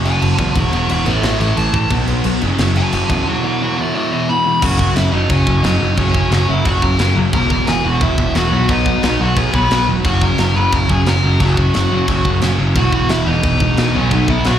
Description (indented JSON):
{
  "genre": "punk rock",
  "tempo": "177 BPM",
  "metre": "4/4",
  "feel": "straight",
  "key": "unclear",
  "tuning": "A4 = 436 Hz",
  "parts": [
    { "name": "crunchy overdriven guitar", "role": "riff", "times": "0.0-14.6 s", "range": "E2 to B3", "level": "-22 LUFS", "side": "right 7 dB", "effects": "none" },
    { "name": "crunchy overdriven guitar", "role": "riff", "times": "0.0-14.6 s", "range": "E2 to B3", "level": "-21 LUFS", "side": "equal", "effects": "slapback echo" },
    { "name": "overdriven semi-hollow guitar", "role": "riff", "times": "0.0-14.6 s", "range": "E2 to B3", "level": "-23 LUFS", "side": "left 9 dB", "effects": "slapback echo" },
    { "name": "modern bright picked electric bass", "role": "bass", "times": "0.0-14.6 s", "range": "E1 to E2", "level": "-17 LUFS", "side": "equal", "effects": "none" },
    { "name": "dark smooth lead guitar", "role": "melody", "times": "0.1-14.6 s", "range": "C#4 to B5", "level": "-19 LUFS", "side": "left 1 dB", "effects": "overdrive, slapback echo" },
    { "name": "tight metal drum kit", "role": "drums", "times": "0.1-14.5 s", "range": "crash cymbal, kick drum, snare drum", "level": "-21 LUFS", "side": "equal", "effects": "none" }
  ],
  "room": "little or no reverb",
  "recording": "live gig heard through the venue's PA, club reverb",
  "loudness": "-13 LUFS",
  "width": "side -10 dB against mid",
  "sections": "0.0-4.6 A section; 4.6-14.6 B section",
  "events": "half time 0.0-4.6; lead electric guitar solo 0.0-4.6",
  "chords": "0.0 F#5; 0.6 E5; 1.1 A; 1.9 B5; 2.4 F#5; 3.3 E5; 4.6 F#; 7.3 E; 8.5 B; 10.0 F#; 12.8 E5; 13.9 B",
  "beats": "0.23 | 0.56 0.90 1.24 1.58 | 1.92 2.25 2.59 2.93 | 3.27 3.61 3.95 4.29 | 4.63 4.96 5.30 5.64 | 5.98 6.32 6.66 7.00 | 7.33 7.67 8.01 8.35 | 8.69 9.03 9.37 9.71 | 10.05 10.38 10.72 11.06 | 11.40 11.74 12.08 12.42 | 12.76 13.10 13.44 13.78 | 14.12 14.46"
}